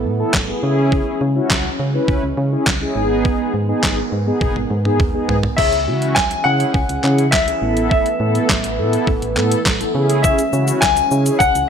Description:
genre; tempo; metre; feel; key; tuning
dance-pop; 103 BPM; 4/4; straight; C# minor; A4 = 438 Hz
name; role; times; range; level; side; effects
sweeping resonant pad; sustained chords; 0.0-11.7 s; D#3 to C#4; -26 LUFS; right 4 dB; lush chorus, sidechain pumping
solid FM bass; bass; 0.0-11.6 s; G#1 to C#3; -21 LUFS; equal; sidechain pumping
mellow synth brass; accompaniment; 0.2-11.4 s; B3 to B4; -20 LUFS; left 1 dB; chorus, sidechain pumping
detuned 8-bit digital drum machine; drums; 0.3-11.7 s; crash cymbal, handclaps, hi-hat, kick drum, shaker, snare drum, toms; -20 LUFS; equal; overdrive
warm grand piano; melody; 5.6-11.7 s; E5 to G#5; -18 LUFS; left 2 dB; lush chorus, ping-pong delay
room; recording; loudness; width
moderate plate reverb, RT60 2.2 s; bright 1980s-style digital production; -15 LUFS; side -7 dB against mid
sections
0.0-5.6 A section; 5.6-11.7 B section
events
drum fill 4.4-5.6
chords
0.0 Asus2; 0.6 C#m; 3.0 G#m; 5.6 C#m; 7.6 Asus2; 9.9 C#m

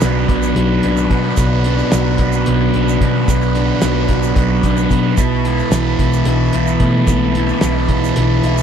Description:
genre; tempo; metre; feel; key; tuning
psychedelic rock; 221 BPM (eighths); 7/8; straight; B minor; A4 = 440 Hz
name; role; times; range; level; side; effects
combo organ; sustained chords; 0.0-8.6 s; D4 to B5; -22 LUFS; right 6 dB; none
fuzz guitar; riff; 0.0-8.6 s; B2 to E4; -16 LUFS; left 1 dB; distortion, phaser
hollow-body short-scale picked electric bass; bass; 0.0-8.6 s; B1 to B2; -18 LUFS; equal; none
cloth-damped thuddy drum kit; drums; 0.0-8.6 s; hi-hat, kick drum, snare drum; -18 LUFS; equal; none
egg shaker; percussion; 0.0-8.6 s; none; -32 LUFS; right 27 dB; none
room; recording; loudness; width
little or no reverb; dry, close 1970s-style studio recording; -13 LUFS; side -8 dB against mid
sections
0.0-8.6 A section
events
none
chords
0.0 Bm; 5.2 Asus2/B

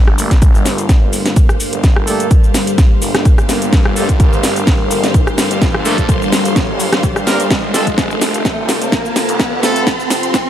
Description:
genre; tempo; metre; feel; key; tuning
bass house; 127 BPM; 4/4; swing 54% on 16ths; G minor; A4 = 440 Hz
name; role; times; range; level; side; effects
deep dark ambient pad; sustained chords; 0.0-10.5 s; G3 to Bb4; -20 LUFS; left 1 dB; chorus, built-in reverb, sidechain pumping
phased detuned saw bass; bass; 0.0-9.6 s; F1 to G2; -23 LUFS; equal; phaser, tube saturation, sidechain pumping, high-pass filter
riser; sound effects; 2.5-10.5 s; none; -23 LUFS; equal; none
clear studio string section; texture; 0.0-10.5 s; G4 to C6; -24 LUFS; right 1 dB; sidechain pumping
house drum kit; drums; 0.1-10.4 s; hi-hat, rim click, shaker, snare drum; -18 LUFS; equal; none
brilliant horn section; stabs; 0.2-9.8 s; A3 to Bb4; -21 LUFS; right 3 dB; sidechain pumping, low-pass filter, digital delay
electronic kick drum; drums; 0.3-10.4 s; none; -12 LUFS; equal; none
room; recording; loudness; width
little or no reverb; high-pass filter; -11 LUFS; side -11 dB against mid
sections
0.0-10.5 A section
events
build-up 0.0-10.5; drum fill 0.0-10.5; filter sweep on horn section 0.0-10.5; filter sweep 0.0-10.5; riser 2.5-10.5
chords
0.0 Gmadd9; 7.5 F

